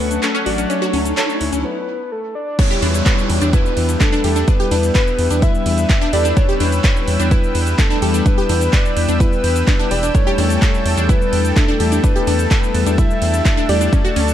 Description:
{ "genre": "progressive house", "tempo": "127 BPM", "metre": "4/4", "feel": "straight", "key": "E dorian", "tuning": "A4 = 443 Hz", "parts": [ { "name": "soft octave-layered synth lead", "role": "melody", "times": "0.0-14.3 s", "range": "A4 to E5", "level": "-24 LUFS", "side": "left 1 dB", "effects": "chorus, sidechain pumping, ping-pong delay" }, { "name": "soft synth bell", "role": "second line", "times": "0.0-14.3 s", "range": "A4 to E5", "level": "-28 LUFS", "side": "right 2 dB", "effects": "none" }, { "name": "lush unison pad", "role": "sustained chords", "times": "0.0-14.3 s", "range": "A4 to E6", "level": "-27 LUFS", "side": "equal", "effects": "chorus, sidechain pumping" }, { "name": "soft supersaw", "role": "stabs", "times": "0.0-14.3 s", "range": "F#3 to B4", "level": "-22 LUFS", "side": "left 4 dB", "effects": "sidechain pumping, ping-pong delay" }, { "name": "round analog bass", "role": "bass", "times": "0.0-14.3 s", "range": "E1 to E2", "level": "-19 LUFS", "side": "equal", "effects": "sidechain pumping" }, { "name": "riser and downlifter", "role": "sound effects", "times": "0.0-6.4 s", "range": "none", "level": "-28 LUFS", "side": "right 1 dB", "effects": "none" }, { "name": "house drum kit", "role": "drums", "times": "0.1-14.3 s", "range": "crash cymbal, handclaps, hi-hat, ride cymbal, shaker", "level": "-24 LUFS", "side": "right 1 dB", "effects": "none" }, { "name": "wide unison pluck", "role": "arpeggios", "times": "0.2-14.2 s", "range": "C#4 to B4", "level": "-24 LUFS", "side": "equal", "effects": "vintage 12-bit sampler grit, sidechain pumping, ping-pong delay" }, { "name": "electronic kick drum", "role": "drums", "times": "2.6-14.0 s", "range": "none", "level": "-15 LUFS", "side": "equal", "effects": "none" } ], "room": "light reverb", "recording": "dark, warm production", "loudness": "-14 LUFS", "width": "side -11 dB against mid", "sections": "0.0-2.6 A section; 2.6-14.3 B section", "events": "build-up 0.0-2.6; riser 0.0-1.6; filter sweep on synth pluck 0.0-2.6; break 1.6-2.6; drop 2.6-14.3", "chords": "0.0 Dmaj7; 2.6 Em7; 10.1 A7sus4/E" }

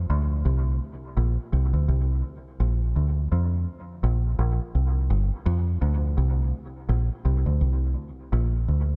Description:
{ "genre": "reggae", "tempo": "84 BPM", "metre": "4/4", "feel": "swing 58% on 16ths", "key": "unclear", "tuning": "A4 = 437 Hz", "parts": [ { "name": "deep dub fingered electric bass", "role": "solo", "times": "0.0-9.0 s", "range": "G1 to F2", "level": "-25 LUFS", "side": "equal", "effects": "dub echo" } ], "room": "little or no reverb", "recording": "echo-heavy mix", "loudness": "-25 LUFS", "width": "mono", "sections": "0.0-9.0 A section", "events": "none", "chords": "none" }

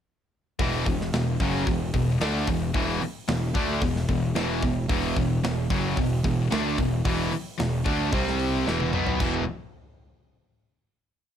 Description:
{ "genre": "heavy metal", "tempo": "111 BPM", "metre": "4/4", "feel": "straight", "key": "E minor", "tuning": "A4 = 440 Hz", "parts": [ { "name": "distorted electric guitar", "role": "riff", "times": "0.6-9.4 s", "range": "E2 to D4", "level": "-32 LUFS", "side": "equal", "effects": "overdrive" }, { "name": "high-gain distorted guitar", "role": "riff", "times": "0.6-9.4 s", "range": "E2 to D4", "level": "-29 LUFS", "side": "left 8 dB", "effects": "distortion" }, { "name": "sludgy distorted guitar", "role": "riff", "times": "0.6-9.4 s", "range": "E2 to D4", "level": "-29 LUFS", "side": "right 8 dB", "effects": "overdrive" }, { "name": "fuzz picked electric bass", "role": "bass", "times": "0.6-9.5 s", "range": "E1 to D2", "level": "-30 LUFS", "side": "equal", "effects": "overdrive" }, { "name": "tight metal drum kit", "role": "drums", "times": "0.6-9.3 s", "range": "crash cymbal, hi-hat, kick drum, snare drum, toms", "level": "-29 LUFS", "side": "equal", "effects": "none" } ], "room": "light reverb", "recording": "dark, warm production", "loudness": "-23 LUFS", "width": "side -9 dB against mid", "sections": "0.6-9.2 riff; 9.2-11.4 final chord", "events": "drum fill 8.7-9.2", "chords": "0.6 E5; 8.1 C5; 8.7 E5" }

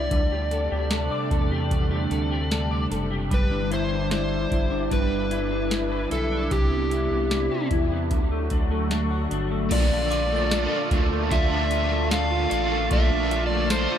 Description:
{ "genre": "dream pop", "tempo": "75 BPM", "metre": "4/4", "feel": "straight", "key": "unclear", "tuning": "A4 = 442 Hz", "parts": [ { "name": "overdriven slide guitar", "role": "melody", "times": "0.0-14.0 s", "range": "G4 to F5", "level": "-28 LUFS", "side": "equal", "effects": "ping-pong delay" }, { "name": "phased analog pad", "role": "sustained chords", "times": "0.0-14.0 s", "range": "C3 to A5", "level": "-29 LUFS", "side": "right 1 dB", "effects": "phaser, chorus" }, { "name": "electric guitar through a small old amp", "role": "arpeggios", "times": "0.0-14.0 s", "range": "Bb2 to D5", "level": "-29 LUFS", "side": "left 3 dB", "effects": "ensemble chorus, ping-pong delay" }, { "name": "round analog bass", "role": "bass", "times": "0.0-13.9 s", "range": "F#1 to E2", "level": "-28 LUFS", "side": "equal", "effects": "none" }, { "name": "booming analog drum machine", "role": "drums", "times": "0.1-13.9 s", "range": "crash cymbal, hi-hat, kick drum, snare drum, tambourine", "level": "-24 LUFS", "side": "equal", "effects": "none" }, { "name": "raw garage guitar", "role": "accompaniment", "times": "9.7-14.0 s", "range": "Bb2 to A4", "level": "-29 LUFS", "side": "right 4 dB", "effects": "overdrive, tremolo, analog chorus" }, { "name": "glockenspiel with brass mallets", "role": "texture", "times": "10.1-12.3 s", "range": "D6 to A6", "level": "-38 LUFS", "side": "right 4 dB", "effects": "none" } ], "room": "light reverb", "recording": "none", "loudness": "-21 LUFS", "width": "side -9 dB against mid", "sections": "0.0-9.7 A section; 9.7-14.0 B section", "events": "none", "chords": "0.1 D7sus4; 3.3 G6; 6.5 Cmaj7; 8.1 D; 9.7 Bbmaj7" }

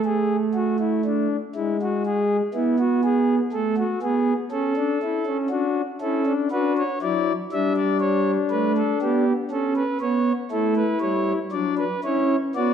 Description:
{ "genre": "classical, baroque-style 4-part fugue for pipe organ", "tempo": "60 BPM", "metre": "4/4", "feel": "straight", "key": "D major", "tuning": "A4 = 436 Hz", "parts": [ { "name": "pipe organ, principal", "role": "solo", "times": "0.0-12.7 s", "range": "F#3 to E5", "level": "-20 LUFS", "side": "equal", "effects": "none" } ], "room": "wet recital hall reverb, RT60 1.7 s", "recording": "dark, warm production", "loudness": "-20 LUFS", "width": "side -8 dB against mid", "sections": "0.0-12.7 A section", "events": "none", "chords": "0.0 Bm7/A (rootless); 1.6 E/G#; 3.5 A; 5.5 D; 7.5 Em7/G (rootless); 9.5 A7; 11.5 D/F#" }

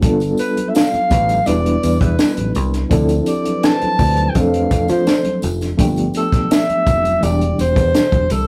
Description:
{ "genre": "lush 1970s-style soul", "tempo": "83 BPM", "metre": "4/4", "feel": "straight", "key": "unclear", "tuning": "A4 = 441 Hz", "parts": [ { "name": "reed electric piano", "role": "accompaniment", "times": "0.0-8.5 s", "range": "B2 to B4", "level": "-22 LUFS", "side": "equal", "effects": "fast tremolo" }, { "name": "fingered electric bass", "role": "bass", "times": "0.0-8.5 s", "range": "E1 to F3", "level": "-21 LUFS", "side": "equal", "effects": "none" }, { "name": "compact cocktail drum kit", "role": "drums", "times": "0.0-8.5 s", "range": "hi-hat, kick drum, snare drum", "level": "-20 LUFS", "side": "equal", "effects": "none" }, { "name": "congas", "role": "percussion", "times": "0.0-8.5 s", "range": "none", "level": "-33 LUFS", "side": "equal", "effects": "none" }, { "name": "tambourine", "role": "percussion", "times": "0.0-8.5 s", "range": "none", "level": "-40 LUFS", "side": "equal", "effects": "none" }, { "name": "mellow alto saxophone", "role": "melody", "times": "0.4-8.5 s", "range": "A4 to A5", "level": "-21 LUFS", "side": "equal", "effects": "none" }, { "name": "vibraphone with medium mallets", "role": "texture", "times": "3.3-5.1 s", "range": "G4 to C5", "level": "-31 LUFS", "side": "equal", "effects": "none" } ], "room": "moderate studio reverb, RT60 0.6 s", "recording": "rough rehearsal-room recording", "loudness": "-16 LUFS", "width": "mono", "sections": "0.0-8.5 A section", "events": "none", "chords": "0.0 G9; 1.5 Em7; 2.9 Dm9; 4.3 F6; 5.8 G9; 7.2 Em7" }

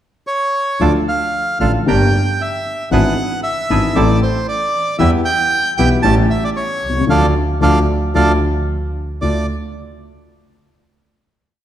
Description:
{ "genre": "tango", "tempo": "114 BPM", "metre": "4/4", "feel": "rubato", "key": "D harmonic minor", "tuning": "A4 = 440 Hz", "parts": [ { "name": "bandoneon", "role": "melody", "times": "0.3-9.5 s", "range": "A4 to A5", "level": "-18 LUFS", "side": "right 2 dB", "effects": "slapback echo" }, { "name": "dark upright piano", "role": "accompaniment", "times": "0.8-9.4 s", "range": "G1 to A4", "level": "-18 LUFS", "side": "left 3 dB", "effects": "none" }, { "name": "bandoneon", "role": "stabs", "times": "0.8-9.4 s", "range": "A3 to Bb4", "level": "-25 LUFS", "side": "right 4 dB", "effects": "none" }, { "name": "clear double bass", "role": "bass", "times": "0.8-9.4 s", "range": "G1 to E2", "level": "-18 LUFS", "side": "right 1 dB", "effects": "none" } ], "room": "moderate concert hall reverb, RT60 1.9 s", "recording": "none", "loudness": "-14 LUFS", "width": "side -11 dB against mid", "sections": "0.0-0.8 pickup bar; 0.8-9.2 A section; 9.2-11.3 final chord", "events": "band accent 7.1-9.2", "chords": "0.0 N.C.; 0.8 Dm; 1.9 Gm; 2.9 E7/G#; 4.0 Am; 5.0 Em; 6.0 A7; 7.1 Dm; 8.7 N.C.; 9.2 Dm" }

